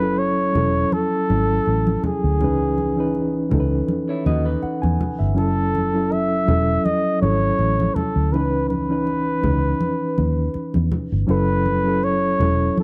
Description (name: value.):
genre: lush 1970s-style soul.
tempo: 81 BPM.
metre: 4/4.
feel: swing 54% on 16ths.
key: F# dorian.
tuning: A4 = 440 Hz.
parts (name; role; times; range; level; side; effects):
breathy flugelhorn; melody; 0.0-12.8 s; G#4 to E5; -25 LUFS; equal; none.
mellow reed electric piano; accompaniment; 0.0-12.8 s; E3 to G#5; -24 LUFS; equal; fast tremolo.
vintage muted fingered electric bass; bass; 0.0-12.7 s; E1 to E2; -24 LUFS; equal; none.
congas; percussion; 0.6-12.8 s; none; -29 LUFS; equal; none.
electric guitar through a small old amp; riff; 4.1-5.3 s; D#4 to D#5; -31 LUFS; equal; none.
room: small room ambience.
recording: dry, close 1970s-style studio recording.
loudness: -20 LUFS.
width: mono.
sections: 0.0-12.8 A section.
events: none.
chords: 0.0 F#m7; 2.4 C#m9; 5.4 F#m7; 8.3 C#m9; 11.3 F#m7.